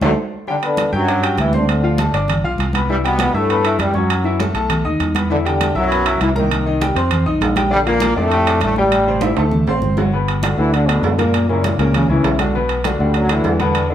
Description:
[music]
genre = latin, salsa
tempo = 199 BPM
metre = 4/4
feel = straight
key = unclear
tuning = A4 = 440 Hz
[part]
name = bright trombone section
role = melody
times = 0.0-13.9 s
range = F#2 to E4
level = -19 LUFS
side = left 1 dB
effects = none
[part]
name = clear concert grand piano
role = accompaniment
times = 0.0-13.9 s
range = Bb2 to G6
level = -20 LUFS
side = left 2 dB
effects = none
[part]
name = fingered electric bass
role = bass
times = 0.0-13.9 s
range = G1 to G2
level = -20 LUFS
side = equal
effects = none
[part]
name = congas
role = percussion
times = 0.0-13.9 s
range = none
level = -24 LUFS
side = right 2 dB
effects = none
[part]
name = timbales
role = percussion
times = 0.0-13.9 s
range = none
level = -24 LUFS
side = right 6 dB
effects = none
[sound]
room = moderate large studio reverb, RT60 1.2 s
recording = band playing live in one room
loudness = -14 LUFS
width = side -10 dB against mid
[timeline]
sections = 0.5-10.1 A section; 10.1-13.9 B section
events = drum fill 0.0-0.5, 9.2-10.1; band accent 0.0-0.5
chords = 0.5 Em7; 1.7 Dm7; 2.3 G7; 2.9 Cmaj7; 4.1 F#m7; 4.7 B7; 5.3 Em9; 6.5 Cm7; 7.1 F5; 7.7 Bb6; 8.9 Am7; 9.5 D7; 10.1 Gmaj7; 11.3 F#7; 12.5 Bm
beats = 0.18 | 0.48 0.78 1.08 1.38 | 1.69 1.99 2.29 2.59 | 2.89 3.19 3.50 3.80 | 4.10 4.40 4.70 5.00 | 5.31 5.61 5.91 6.21 | 6.51 6.81 7.12 7.42 | 7.72 8.02 8.32 8.62 | 8.92 9.22 9.53 9.83 | 10.13 10.43 10.73 11.03 | 11.34 11.64 11.94 12.24 | 12.54 12.84 13.15 13.45 | 13.75

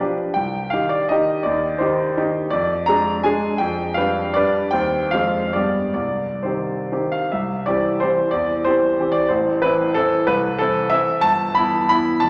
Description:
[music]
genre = classical, romantic triple-time dance for piano with dotted rhythms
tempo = 120-196 BPM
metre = 3/4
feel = rubato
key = C minor, C major from 7.3 s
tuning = A4 = 440 Hz
[part]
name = clear concert grand piano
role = solo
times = 0.0-12.3 s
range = F1 to B5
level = -20 LUFS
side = equal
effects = none
[sound]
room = wet concert hall reverb, RT60 2.1 s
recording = none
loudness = -20 LUFS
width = mono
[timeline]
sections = 0.0-7.3 A section; 7.3-12.3 B section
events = none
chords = 0.4 Cm; 1.4 Cm/Eb; 2.5 Ddim/F; 3.6 G7/F; 4.7 Cm/Eb; 5.1 Fm; 5.6 G; 6.0 Cm; 7.3 C; 8.3 C/E; 9.3 Am; 10.3 Am/C; 11.2 Em/G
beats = 0.00 | 0.35 0.72 1.09 | 1.44 1.80 2.17 | 2.52 2.86 3.23 | 3.60 3.98 4.37 | 4.74 5.13 5.55 | 5.97 6.44 6.91 | 7.32 7.67 8.01 | 8.32 8.65 9.00 | 9.31 9.64 9.97 | 10.28 10.61 10.93 | 11.25 11.57 11.91 | 12.24

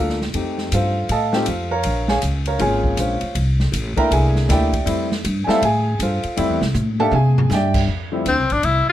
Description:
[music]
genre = jazz, small-group swing and bop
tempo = 159 BPM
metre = 4/4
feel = swing 63% on 8ths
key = F major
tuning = A4 = 440 Hz
[part]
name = warm grand piano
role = accompaniment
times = 0.0-8.2 s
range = F3 to Bb5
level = -20 LUFS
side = equal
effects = none
[part]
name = upright bass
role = bass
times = 0.0-8.9 s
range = Ab1 to C3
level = -20 LUFS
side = equal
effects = none
[part]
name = open jazz drum kit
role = drums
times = 0.1-8.7 s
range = crash cymbal, hi-hat, kick drum, ride cymbal, snare drum, toms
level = -26 LUFS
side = equal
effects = none
[part]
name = clear tenor saxophone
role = melody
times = 8.3-8.9 s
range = C4 to E4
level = -17 LUFS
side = left 4 dB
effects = none
[sound]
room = light reverb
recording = close, detailed microphones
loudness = -17 LUFS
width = side -12 dB against mid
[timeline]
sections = 0.0-7.9 A section; 7.9-8.9 B section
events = drum fill 6.7-7.5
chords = 0.3 F7; 1.8 Bbm9; 3.4 C13; 4.9 Fmaj9; 7.1 Cadd9; 7.9 Fmaj7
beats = | 0.34 0.71 1.09 1.47 | 1.84 2.22 2.60 2.98 | 3.35 3.73 4.11 4.49 | 4.86 5.24 5.62 5.99 | 6.37 6.75 7.12 7.50 | 7.88 8.26 8.64

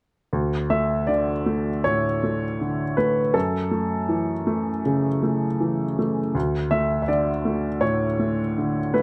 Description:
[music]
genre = neoclassical minimalist piano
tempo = 80 BPM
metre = 4/4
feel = rubato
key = D major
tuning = A4 = 440 Hz
[part]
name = clear upright piano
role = solo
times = 0.3-9.0 s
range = D2 to E5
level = -23 LUFS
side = equal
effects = none
[sound]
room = moderate studio reverb, RT60 0.7 s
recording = dark, warm production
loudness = -23 LUFS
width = mono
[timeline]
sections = 0.3-9.0 A section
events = none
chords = 0.3 D5; 3.3 F#m7; 6.3 D5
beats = | 0.30 1.08 1.83 2.59 | 3.34 4.10 4.85 5.60 | 6.35 7.08 7.82 8.56

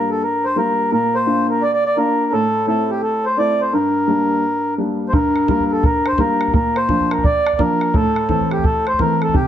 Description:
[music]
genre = celtic folk, Celtic hornpipe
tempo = 171 BPM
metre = 4/4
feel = swing 64% on 8ths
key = G dorian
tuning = A4 = 440 Hz
[part]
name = mellow accordion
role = melody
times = 0.0-9.5 s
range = G4 to D5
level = -18 LUFS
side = equal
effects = plate reverb
[part]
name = warm upright piano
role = accompaniment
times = 0.0-9.5 s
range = G2 to F4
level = -19 LUFS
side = equal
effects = none
[part]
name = bodhran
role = percussion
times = 5.1-9.4 s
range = none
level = -20 LUFS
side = equal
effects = none
[sound]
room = moderate studio reverb, RT60 0.6 s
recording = none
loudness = -15 LUFS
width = side -10 dB against mid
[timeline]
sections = 0.0-5.1 A section; 5.1-9.5 A section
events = none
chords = 0.0 Gm7; 0.9 Bb; 2.3 Am; 3.7 Gm; 5.1 Gm7; 6.5 Bb; 7.9 Am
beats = 0.21 0.56 | 0.91 1.26 1.62 1.97 | 2.32 2.67 3.02 3.37 | 3.72 4.07 4.42 4.78 | 5.13 5.48 5.83 6.18 | 6.53 6.88 7.23 7.58 | 7.94 8.29 8.64 8.99 | 9.34

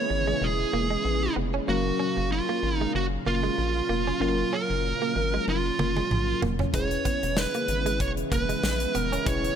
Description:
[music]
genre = 1980s-style pop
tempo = 95 BPM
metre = 4/4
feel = swing 55% on 16ths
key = unclear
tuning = A4 = 440 Hz
[part]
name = fuzz lead guitar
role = melody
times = 0.0-9.6 s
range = F4 to C#5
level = -28 LUFS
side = right 4 dB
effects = distortion
[part]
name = FM electric piano with soft pad layer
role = accompaniment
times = 0.0-9.6 s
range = Gb3 to F5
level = -32 LUFS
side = left 4 dB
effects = chorus, tremolo
[part]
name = soft string machine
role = sustained chords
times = 0.0-9.6 s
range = Bb2 to F5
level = -33 LUFS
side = left 1 dB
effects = ensemble chorus
[part]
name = direct-recorded clean electric guitar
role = riff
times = 0.0-9.4 s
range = G#3 to C#4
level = -34 LUFS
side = right 5 dB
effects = tube saturation, wide subtle chorus
[part]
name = rubbery square bass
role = bass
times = 0.1-9.5 s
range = Eb1 to Bb1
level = -30 LUFS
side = equal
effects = none
[part]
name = modern studio drum kit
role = drums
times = 5.5-9.6 s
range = hi-hat, kick drum, snare drum, toms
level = -30 LUFS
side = equal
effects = none
[sound]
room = light reverb, small room ambience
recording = none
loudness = -24 LUFS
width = side -8 dB against mid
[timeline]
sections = 0.0-9.6 A section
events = drum fill 5.5-6.7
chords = 0.0 E6; 1.7 Gbmaj7; 6.7 E6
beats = 0.42 1.05 | 1.68 2.31 2.95 3.58 | 4.21 4.84 5.47 6.10 | 6.74 7.37 8.00 8.63 | 9.26

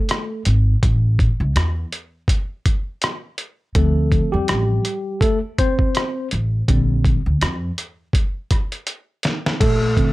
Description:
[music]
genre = hip hop, jazz-hop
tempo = 82 BPM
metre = 4/4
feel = swing 57% on 16ths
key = Bb major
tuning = A4 = 439 Hz
[part]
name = tine electric piano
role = accompaniment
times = 0.0-10.1 s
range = D3 to C5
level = -21 LUFS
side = equal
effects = medium stereo tremolo
[part]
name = dusty soul sampler-style drum kit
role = drums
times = 0.1-10.1 s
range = crash cymbal, hi-hat, kick drum, rim click, snare drum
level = -19 LUFS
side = equal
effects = overdrive
[part]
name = upright bass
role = bass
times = 0.5-10.0 s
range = Ab1 to F2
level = -18 LUFS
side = equal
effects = none
[sound]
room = little or no reverb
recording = none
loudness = -17 LUFS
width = side -19 dB against mid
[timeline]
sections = 0.0-9.6 A section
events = tine electric piano solo 0.0-9.6; break 0.8-3.8; drum fill 8.9-9.6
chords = 0.0 N.C.; 0.8 A5; 3.8 Dm7; 6.7 Bb69; 9.6 Bbmaj9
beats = 0.09 | 0.82 1.56 2.29 3.02 | 3.75 4.48 5.21 5.95 | 6.68 7.41 8.14 8.87 | 9.61

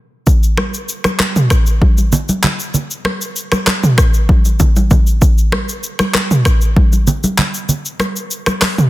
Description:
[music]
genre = afrobeats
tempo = 97 BPM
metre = 4/4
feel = straight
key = none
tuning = none
[part]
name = deep house drum kit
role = drums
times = 0.3-8.9 s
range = finger snaps, handclaps, hi-hat, kick drum, rim click, shaker, toms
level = -12 LUFS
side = equal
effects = none
[part]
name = congas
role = percussion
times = 0.3-8.8 s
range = none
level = -19 LUFS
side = right 1 dB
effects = none
[sound]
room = little or no reverb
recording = dense, heavily limited modern master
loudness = -12 LUFS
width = side -17 dB against mid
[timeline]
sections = 0.0-8.9 A section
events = break 0.0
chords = none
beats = | 0.27 0.89 1.51 2.13 | 2.74 3.36 3.98 4.60 | 5.22 5.84 6.46 7.07 | 7.69 8.31

